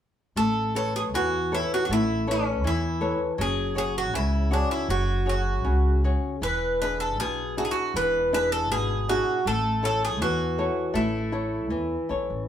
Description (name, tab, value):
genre	fado-style ballad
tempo	79 BPM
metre	2/4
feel	rubato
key	A major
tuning	A4 = 440 Hz
part	Irish bouzouki	melody	0.4-12.1 s	C#4 to B4	-26 LUFS	right 1 dB	none
part	flamenco guitar	accompaniment	0.4-12.5 s	B2 to C#5	-28 LUFS	left 2 dB	none
part	upright bass	bass	0.4-12.5 s	E1 to E2	-28 LUFS	equal	none
room	moderate studio reverb, RT60 0.8 s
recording	band playing live in one room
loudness	-23 LUFS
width	side -10 dB against mid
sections	0.3-12.5 A section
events	none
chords	0.3 Aadd9; 3.4 F#sus2; 6.4 E7; 9.5 A